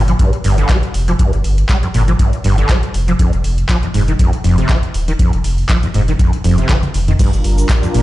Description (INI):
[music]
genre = acid house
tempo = 120 BPM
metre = 4/4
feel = swing 55% on 16ths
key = G minor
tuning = A4 = 440 Hz
[part]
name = round analog bass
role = bass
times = 0.0-8.0 s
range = Eb1 to G1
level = -15 LUFS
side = equal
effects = tube saturation, sidechain pumping
[part]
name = overdriven acid bass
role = riff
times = 0.1-8.0 s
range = Eb2 to G3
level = -17 LUFS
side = equal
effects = distortion, ensemble chorus, ping-pong delay
[part]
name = booming analog drum machine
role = drums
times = 0.1-8.0 s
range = cabasa, crash cymbal, handclaps, hi-hat, toms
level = -23 LUFS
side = equal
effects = small room ambience
[part]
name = electronic kick drum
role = drums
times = 0.2-7.8 s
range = none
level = -14 LUFS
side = equal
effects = small room ambience
[part]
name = lush unison pad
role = sustained chords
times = 7.2-8.0 s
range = G3 to Bb4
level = -20 LUFS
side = equal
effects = chorus, phaser, sidechain pumping
[sound]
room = light reverb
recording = played on a big sound system in a bare room, large studio reverb, nothing above 10.7 kHz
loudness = -12 LUFS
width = side -16 dB against mid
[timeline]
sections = 0.0-8.0 A section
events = drum fill 6.7-7.2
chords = 0.0 G7(no3); 3.2 N.C.; 7.2 Gm7